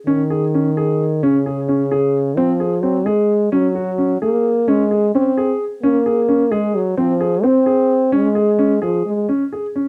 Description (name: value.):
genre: contemporary instrumental, chamber music in an uneven meter.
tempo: 260 BPM (eighths).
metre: 5/8.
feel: straight.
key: Db major.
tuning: A4 = 440 Hz.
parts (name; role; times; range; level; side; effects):
mellow French horn; second line; 0.1-9.3 s; Db3 to C4; -19 LUFS; equal; cassette tape.
dark grand piano; arpeggios; 0.1-9.9 s; C4 to Ab4; -21 LUFS; equal; cassette tape.
room: wet booth ambience, RT60 0.2 s.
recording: home recording on cassette.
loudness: -17 LUFS.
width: mono.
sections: 0.1-9.3 A section.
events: none.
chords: 0.1 Db5; 2.4 Fm; 3.5 Gb; 4.7 Db5; 7.0 Fm; 8.1 Db5.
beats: | 0.07 0.31 0.54 0.77 1.00 | 1.23 1.46 1.69 1.92 2.14 | 2.37 2.60 2.83 3.06 3.29 | 3.52 3.75 3.98 4.22 4.45 | 4.68 4.92 5.15 5.38 5.61 | 5.83 6.06 6.29 6.52 6.75 | 6.98 7.21 7.44 7.67 7.90 | 8.13 8.36 8.59 8.82 9.06 | 9.29 9.53 9.76.